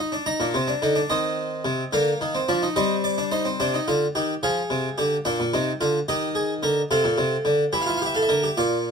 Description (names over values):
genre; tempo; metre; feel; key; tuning
classical, baroque-style 3-part fugue for harpsichord; 72 BPM (dotted quarters); 6/8; straight; Eb major; A4 = 440 Hz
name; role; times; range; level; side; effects
harpsichord; solo; 0.0-8.9 s; Bb2 to Bb5; -21 LUFS; equal; none
room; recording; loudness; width
moderate studio reverb, RT60 0.6 s; none; -21 LUFS; side -6 dB against mid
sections
0.3-3.6 A section; 3.6-8.9 B section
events
none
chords
0.3 Eb5; 1.1 Cm; 1.9 Bb/D; 2.8 Eb/G; 3.6 Cmadd9; 4.4 Ddim; 5.3 Gm/Bb; 6.1 Ebmaj7; 6.9 Bbmaj9; 7.7 Gm13